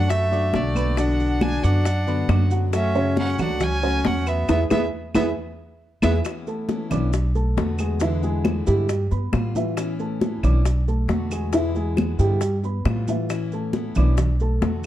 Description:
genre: latin, Cuban son and guajira.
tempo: 136 BPM.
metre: 4/4.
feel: straight.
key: A major.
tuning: A4 = 442 Hz.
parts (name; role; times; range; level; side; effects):
bright fiddle; melody; 0.0-6.2 s; D5 to G#5; -27 LUFS; right 1 dB; none.
clear trumpet; second line; 0.0-6.1 s; A3 to D4; -32 LUFS; right 1 dB; none.
picked plugged-in steel-string acoustic guitar; accompaniment; 0.0-14.9 s; B2 to F#4; -30 LUFS; left 4 dB; none.
dark concert grand piano; arpeggios; 0.0-14.8 s; C#3 to D6; -26 LUFS; right 1 dB; none.
upright bass; bass; 0.0-14.9 s; B1 to A2; -22 LUFS; equal; none.
bongos; percussion; 0.1-14.8 s; none; -30 LUFS; left 6 dB; none.
congas; percussion; 0.1-14.8 s; none; -27 LUFS; equal; none.
maracas; percussion; 0.1-14.9 s; none; -42 LUFS; right 6 dB; none.
claves; percussion; 0.8-14.2 s; none; -38 LUFS; right 1 dB; none.
room: light reverb.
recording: dark, warm production.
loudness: -20 LUFS.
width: side -13 dB against mid.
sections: 0.0-6.2 A section; 6.2-14.9 B section.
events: band accent 4.5-6.2.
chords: 0.0 D; 1.0 Bm; 2.7 F#m; 4.5 E; 6.2 Aadd9; 7.1 Bm7; 8.0 E7; 8.9 G7; 9.8 Aadd9; 10.7 Bm7; 11.5 E7; 12.4 G7; 13.3 Aadd9; 14.2 Bm7.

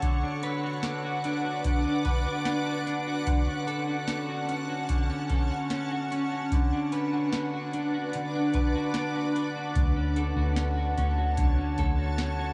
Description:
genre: dream pop.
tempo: 74 BPM.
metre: 4/4.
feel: straight.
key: D major.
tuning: A4 = 439 Hz.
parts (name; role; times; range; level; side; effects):
shimmering ambient pad; sustained chords; 0.0-12.5 s; C#4 to D6; -34 LUFS; equal; chorus, built-in reverb.
clean electric guitar; arpeggios; 0.0-12.5 s; D3 to B4; -33 LUFS; equal; subtle chorus, diffuse ambient delay.
booming analog drum machine; drums; 0.0-12.4 s; hi-hat, kick drum, snare drum; -30 LUFS; equal; none.
vintage muted fingered electric bass; bass; 9.8-12.5 s; D2; -30 LUFS; equal; none.
room: wet huge ambient reverb, RT60 7.8 s.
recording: dreamy mix soaked in reverb.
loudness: -28 LUFS.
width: mono.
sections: 0.0-12.5 A section.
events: none.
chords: 0.0 D6; 3.3 Dmaj7.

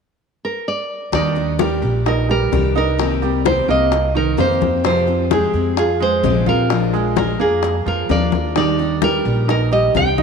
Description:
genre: latin, Cuban son and guajira.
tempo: 129 BPM.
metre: 4/4.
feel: straight.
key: Eb major.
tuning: A4 = 441 Hz.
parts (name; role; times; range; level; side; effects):
nylon-string guitar; melody; 0.4-10.2 s; Ab4 to G5; -20 LUFS; right 1 dB; none.
picked steel-string acoustic guitar; accompaniment; 1.1-10.2 s; C3 to G4; -23 LUFS; left 12 dB; none.
clear grand piano; arpeggios; 1.1-10.2 s; Eb3 to F5; -21 LUFS; right 11 dB; none.
upright bass; bass; 1.1-10.2 s; Bb1 to F2; -21 LUFS; equal; none.
bongos; percussion; 1.1-10.2 s; none; -25 LUFS; left 14 dB; none.
congas; percussion; 1.1-10.2 s; none; -24 LUFS; left 9 dB; none.
room: moderate plate reverb, RT60 3.7 s.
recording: 1960s-style stereo with parts hard left and right.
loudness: -15 LUFS.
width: side -6 dB against mid.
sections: 0.0-1.1 A section; 1.1-10.2 B section.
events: none.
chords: 0.0 N.C.; 1.1 Ebmaj7; 3.0 Cm7; 4.8 Fmadd9; 6.7 Bb7; 8.6 Ebmaj7.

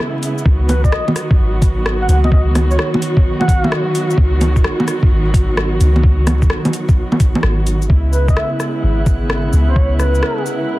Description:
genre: future garage.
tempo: 129 BPM.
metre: 4/4.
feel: swing 66% on 16ths.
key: unclear.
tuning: A4 = 440 Hz.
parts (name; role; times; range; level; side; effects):
dark studio string section; sustained chords; 0.0-10.8 s; C#3 to F#4; -20 LUFS; right 1 dB; sidechain pumping.
garage drum kit; drums; 0.2-10.6 s; bongos, hi-hat, rim click, shaker; -19 LUFS; equal; soft clipping on snare.
soft 808-style bass; bass; 0.5-10.2 s; G#1 to C#2; -14 LUFS; equal; sidechain pumping.
electronic kick drum; drums; 0.5-9.9 s; none; -13 LUFS; equal; none.
trumpet with bucket mute; melody; 0.7-3.9, 8.1-10.5 s; B4 to F#5; -23 LUFS; equal; analog delay.
drifting glass-harmonics texture; texture; 8.2-10.8 s; B3 to B4; -29 LUFS; right 1 dB; chorus, built-in reverb.
room: digital ambience.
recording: dense, heavily limited modern master, vinyl crackle.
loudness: -12 LUFS.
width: side -18 dB against mid.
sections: 0.0-7.9 A section; 7.9-10.8 B section.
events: none.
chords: 0.5 B; 7.9 C#m7.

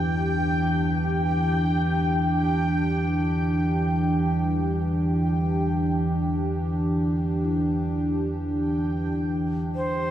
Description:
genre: dark ambient drone.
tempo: free time.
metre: none.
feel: none.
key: E minor.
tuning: A4 = 440 Hz.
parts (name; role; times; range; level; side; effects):
dark analog pad; sustained chords; 0.0-10.1 s; E3 to G4; -24 LUFS; right 1 dB; chorus.
gamelan-type bossed gongs; arpeggios; 0.0-10.1 s; none; barely audible; none; none.
deep rumbling drone; drone; 0.0-10.1 s; E2 to E3; -27 LUFS; equal; built-in reverb.
bubbling stepped-filter texture; texture; 0.0-9.2 s; G5; -31 LUFS; left 1 dB; chorus, built-in reverb.
breathy bright shakuhachi; melody; 9.8-10.1 s; C5; -25 LUFS; right 1 dB; none.
room: wet cathedral reverb, RT60 5.2 s.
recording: none.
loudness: -22 LUFS.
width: side -11 dB against mid.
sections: 0.0-9.2 A section.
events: none.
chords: 0.0 Em.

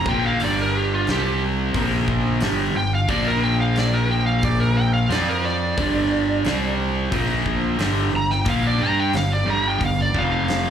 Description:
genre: blues rock power trio and southern rock.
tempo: 89 BPM.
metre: 4/4.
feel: straight.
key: unclear.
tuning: A4 = 443 Hz.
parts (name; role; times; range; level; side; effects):
overdriven slide guitar; melody; 0.0-10.7 s; F4 to Bb5; -24 LUFS; right 1 dB; slapback echo.
crunchy overdriven guitar; riff; 0.0-10.7 s; F2 to G4; -21 LUFS; equal; slapback echo.
fuzz fingered electric bass; bass; 0.0-10.7 s; F1 to G2; -24 LUFS; equal; overdrive.
huge arena drum kit; drums; 0.1-10.6 s; hi-hat, kick drum, snare drum; -29 LUFS; equal; none.
room: small room ambience.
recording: live gig heard through the venue's PA, club reverb.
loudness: -18 LUFS.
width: side -8 dB against mid.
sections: 0.0-10.7 A section.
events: electric slide guitar solo 0.0-10.7.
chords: 0.1 G5; 1.1 C5; 1.7 Bb5; 2.4 G5; 3.1 Bb5; 5.1 F5; 5.8 G5; 6.5 C5; 7.1 Bb5; 7.8 G5; 10.1 F5.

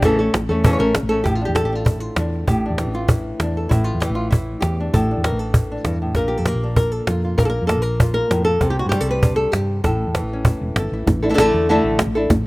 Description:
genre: flamenco.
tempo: 196 BPM.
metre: 4/4.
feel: straight.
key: unclear.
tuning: A4 = 440 Hz.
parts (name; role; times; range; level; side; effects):
flamenco guitar; melody; 0.0-12.4 s; G2 to C#5; -20 LUFS; equal; none.
woody fretless electric bass; bass; 0.0-12.5 s; E1 to G2; -23 LUFS; equal; none.
cajon; percussion; 0.0-12.5 s; none; -19 LUFS; equal; none.
room: small room ambience.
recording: rough home demo mix.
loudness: -17 LUFS.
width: side -21 dB against mid.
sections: 0.0-1.3 A section; 1.3-11.1 B section; 11.1-12.5 A section.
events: none.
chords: 0.0 A; 6.2 Bb; 8.6 Csus2; 9.8 A; 11.1 Asus4.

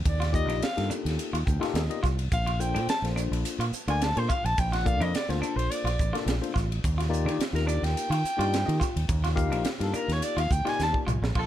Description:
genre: electric jazz fusion.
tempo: 106 BPM.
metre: 4/4.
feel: swing 54% on 16ths.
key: unclear.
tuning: A4 = 440 Hz.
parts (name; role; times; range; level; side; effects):
fingered electric bass; bass; 0.0-11.5 s; A1 to Eb3; -28 LUFS; right 1 dB; none.
warm soprano saxophone; melody; 0.1-11.5 s; F4 to A5; -31 LUFS; equal; none.
crisp fusion drum kit; drums; 0.1-11.5 s; crash cymbal, hi-hat, kick drum, ride cymbal, snare drum, toms; -30 LUFS; right 1 dB; none.
semi-hollow electric guitar; stabs; 0.2-11.5 s; D4 to F4; -36 LUFS; right 1 dB; lush chorus.
tine electric piano; accompaniment; 0.3-11.1 s; Bb3 to G5; -32 LUFS; left 6 dB; analog chorus.
room: light reverb.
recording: dark, warm production.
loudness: -24 LUFS.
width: side -12 dB against mid.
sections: 0.0-11.4 A section.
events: soprano saxophone solo 0.0-11.4; tine electric piano fill 1.2-2.3; drum fill 10.8-11.4.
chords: 0.0 Ebmaj9; 2.3 Bbmaj9; 6.8 Ebmaj9.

